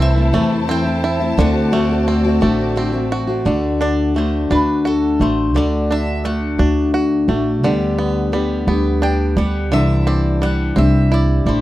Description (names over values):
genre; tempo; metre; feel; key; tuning
acoustic folk duo or small band; 58 BPM (dotted quarters); 6/8; straight; D mixolydian; A4 = 443 Hz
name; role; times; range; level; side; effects
mandolin; melody; 0.0-11.6 s; A4 to G5; -26 LUFS; left 1 dB; none
picked steel-string acoustic guitar; accompaniment; 0.0-11.6 s; C3 to G4; -18 LUFS; left 2 dB; none
warm studio string section; sustained chords; 0.0-3.4 s; E4 to A5; -26 LUFS; left 1 dB; none
bluegrass banjo; arpeggios; 0.0-11.6 s; D3 to F#4; -24 LUFS; right 4 dB; none
upright bass; bass; 0.0-11.6 s; A1 to E2; -18 LUFS; right 1 dB; none
room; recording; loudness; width
little or no reverb; dry, close 1970s-style studio recording; -14 LUFS; side -15 dB against mid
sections
0.0-3.5 A section; 3.5-11.6 B section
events
mandolin solo 3.5-11.6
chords
0.0 Am/C; 1.4 D7; 3.5 D; 7.6 G/D; 9.7 Cadd9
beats
0.35 | 1.39 2.43 | 3.47 4.51 | 5.55 6.60 | 7.64 8.69 | 9.73 10.77